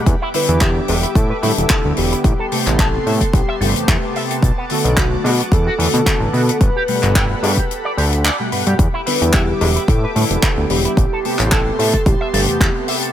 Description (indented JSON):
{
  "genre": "nu-disco, nu disco",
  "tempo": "110 BPM",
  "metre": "4/4",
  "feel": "swing 54% on 16ths",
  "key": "E minor",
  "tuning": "A4 = 439 Hz",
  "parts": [
    { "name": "mellow synth brass", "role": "accompaniment", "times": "0.0-13.1 s", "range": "B2 to F#5", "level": "-23 LUFS", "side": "equal", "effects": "chorus" },
    { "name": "lush unison pad", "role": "sustained chords", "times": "0.0-13.1 s", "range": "B3 to D6", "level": "-28 LUFS", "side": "left 1 dB", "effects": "chorus, sidechain pumping" },
    { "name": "fat analog bass", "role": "bass", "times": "0.1-12.7 s", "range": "E1 to B2", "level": "-18 LUFS", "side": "equal", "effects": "none" },
    { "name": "electronic kick drum", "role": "drums", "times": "0.1-12.7 s", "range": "none", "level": "-16 LUFS", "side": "equal", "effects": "none" },
    { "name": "tight funk drum kit", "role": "drums", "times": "0.1-13.1 s", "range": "handclaps, hi-hat", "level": "-21 LUFS", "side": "left 2 dB", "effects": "none" },
    { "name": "electric guitar with an envelope filter", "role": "riff", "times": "0.2-13.1 s", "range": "B3 to A5", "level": "-27 LUFS", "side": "right 2 dB", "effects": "wide subtle chorus, tape echo" },
    { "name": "soft octave-layered synth lead", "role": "melody", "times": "0.4-12.9 s", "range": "F#4 to B4", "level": "-23 LUFS", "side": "equal", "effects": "chorus, tape echo" },
    { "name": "cowbell", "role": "percussion", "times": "0.9-1.0, 5.2-9.7 s", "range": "none", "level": "-25 LUFS", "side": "left 2 dB", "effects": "none" }
  ],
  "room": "studio reverb",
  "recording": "none",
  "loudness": "-14 LUFS",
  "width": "side -11 dB against mid",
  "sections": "0.0-13.1 A section",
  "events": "kick drops out 7.7-8.8",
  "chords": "0.1 Em7; 2.2 Am9; 4.4 Bm7; 6.6 Gmaj9; 8.8 Em7; 11.0 Am9",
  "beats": "| 0.07 0.61 1.16 1.70 | 2.25 2.79 3.34 3.88 | 4.43 4.97 5.52 6.07 | 6.61 7.16 7.70 8.25 | 8.79 9.34 9.88 10.43 | 10.97 11.52 12.07 12.61"
}